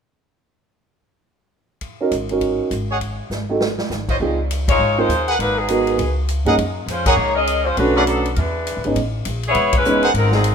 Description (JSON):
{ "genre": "jazz, big band swing", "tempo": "202 BPM", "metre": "4/4", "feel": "swing 60% on 8ths", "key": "unclear", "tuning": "A4 = 439 Hz", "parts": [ { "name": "swinging big-band drum kit", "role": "drums", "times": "1.8-10.5 s", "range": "crash cymbal, hi-hat, kick drum, ride cymbal, snare drum", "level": "-26 LUFS", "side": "equal", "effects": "none" }, { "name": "dark grand piano", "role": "accompaniment", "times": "2.0-10.0 s", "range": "G#3 to Bb4", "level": "-21 LUFS", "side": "right 3 dB", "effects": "none" }, { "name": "upright bass", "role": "bass", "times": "2.1-10.5 s", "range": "E1 to G2", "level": "-23 LUFS", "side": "equal", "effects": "none" }, { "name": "clear trumpet section", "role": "stabs", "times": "2.9-10.1 s", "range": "F4 to Gb5", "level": "-22 LUFS", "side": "right 1 dB", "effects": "none" }, { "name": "clear saxophone section", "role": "melody", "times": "4.7-10.5 s", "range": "Fb3 to Eb5", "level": "-19 LUFS", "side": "left 2 dB", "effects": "none" } ], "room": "light reverb", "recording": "minimal, uncompressed stereo recording", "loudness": "-16 LUFS", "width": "side -6 dB against mid", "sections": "1.8-4.2 A section; 4.2-10.5 B section", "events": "drum fill 3.3-3.9; band accent 4.7, 7.0, 9.7", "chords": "1.8 Ab7sus4; 3.6 Ab; 4.2 Dbmaj9; 5.4 Abm9; 6.0 Db5; 6.6 Gb69; 7.8 Cbm7; 8.4 E7; 9.0 Amaj9#11" }